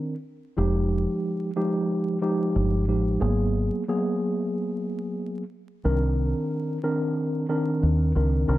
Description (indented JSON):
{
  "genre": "hip hop, boom-bap hip-hop",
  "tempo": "91 BPM",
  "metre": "4/4",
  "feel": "swing 59% on 16ths",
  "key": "C minor",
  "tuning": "A4 = 439 Hz",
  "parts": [
    { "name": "mellow tine electric piano", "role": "accompaniment", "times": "0.0-8.6 s", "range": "Eb3 to Bb4", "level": "-25 LUFS", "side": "equal", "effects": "medium stereo tremolo, cassette tape, high-pass filter, low-pass filter" },
    { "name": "deep dub fingered electric bass", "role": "bass", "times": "0.6-8.6 s", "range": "F1 to Eb2", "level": "-23 LUFS", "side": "equal", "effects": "none" }
  ],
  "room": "light reverb",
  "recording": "vinyl crackle",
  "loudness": "-23 LUFS",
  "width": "side -16 dB against mid",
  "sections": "0.0-8.6 A section",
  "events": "none",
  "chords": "0.0 Cm9; 0.6 Fm9; 3.2 Abm9; 5.9 Cm9"
}